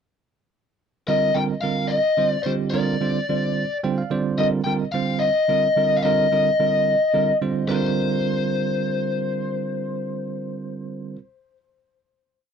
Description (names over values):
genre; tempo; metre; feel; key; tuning
jazz; 73 BPM (dotted quarters); 6/8; straight; C minor; A4 = 439 Hz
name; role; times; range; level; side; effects
biting lead guitar; melody; 1.1-11.2 s; C5 to G5; -22 LUFS; left 3 dB; overdrive, tape echo
bell-like tine electric piano; accompaniment; 1.1-11.2 s; D3 to G5; -23 LUFS; right 5 dB; fast stereo tremolo
room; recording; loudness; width
light reverb; dry, close 1970s-style studio recording; -19 LUFS; side -7 dB against mid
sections
1.1-7.7 A section; 7.7-11.0 final chord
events
tine electric piano fill 3.6-4.4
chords
1.1 C9sus4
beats
| 1.08 1.91 | 2.73 3.55 | 4.38 5.20 | 6.03 6.86 | 7.68 8.51 | 9.34 10.17